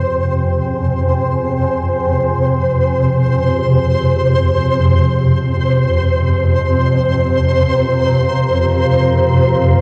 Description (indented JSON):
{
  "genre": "dark ambient drone",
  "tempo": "free time",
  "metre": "none",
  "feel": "none",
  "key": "F minor",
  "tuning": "A4 = 440 Hz",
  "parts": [
    { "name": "deep dark ambient pad", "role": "sustained chords", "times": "0.0-9.8 s", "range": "F4 to Bb5", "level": "-28 LUFS", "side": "equal", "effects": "chorus, built-in reverb" },
    { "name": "swarming drone", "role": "drone", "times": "0.0-9.8 s", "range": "F2 to C3", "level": "-16 LUFS", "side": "equal", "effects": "built-in reverb" },
    { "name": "flickering grainy texture", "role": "texture", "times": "0.0-9.8 s", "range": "C5", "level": "-19 LUFS", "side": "equal", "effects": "built-in reverb" }
  ],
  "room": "wet plate reverb, RT60 3.5 s",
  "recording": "dreamy mix soaked in reverb",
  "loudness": "-15 LUFS",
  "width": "mono",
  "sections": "0.0-9.8 A section",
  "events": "fade-in on ambient pad 0.0-9.8; filter sweep on synth drone 0.0-9.8",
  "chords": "0.0 Fm"
}